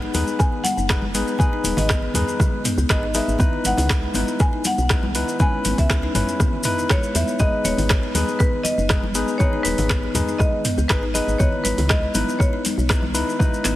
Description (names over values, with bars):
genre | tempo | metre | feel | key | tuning
afro house | 120 BPM | 4/4 | straight | G# minor | A4 = 440 Hz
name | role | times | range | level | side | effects
marimba with hard mallets | melody | 0.0-13.8 s | B4 to G#5 | -27 LUFS | equal | digital delay
buzzing kalimba | arpeggios | 0.0-13.8 s | D#3 to D#4 | -28 LUFS | left 1 dB | sidechain pumping, digital delay
bright tine electric piano | stabs | 0.0-13.8 s | C#4 to B4 | -26 LUFS | left 3 dB | sidechain pumping, digital delay
woody FM bass | bass | 0.0-13.7 s | D#1 to E2 | -24 LUFS | equal | sidechain pumping
congas | percussion | 0.0-13.8 s | none | -30 LUFS | left 1 dB | none
deep house drum kit | drums | 0.1-13.8 s | handclaps, hi-hat, rim click, toms | -26 LUFS | right 1 dB | studio reverb
maracas | percussion | 0.1-13.8 s | none | -30 LUFS | left 2 dB | none
electronic kick drum | drums | 0.4-13.5 s | none | -20 LUFS | equal | studio reverb
room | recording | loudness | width
light reverb, studio reverb | heavily compressed radio sound | -18 LUFS | side -15 dB against mid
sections
0.0-13.8 A section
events
none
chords
0.0 G#m; 3.4 C#m7; 7.4 G#m; 11.4 C#m7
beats
0.40 0.90 | 1.40 1.90 2.40 2.90 | 3.40 3.90 4.40 4.90 | 5.40 5.90 6.40 6.90 | 7.40 7.90 8.40 8.90 | 9.40 9.90 10.40 10.90 | 11.40 11.90 12.40 12.90 | 13.40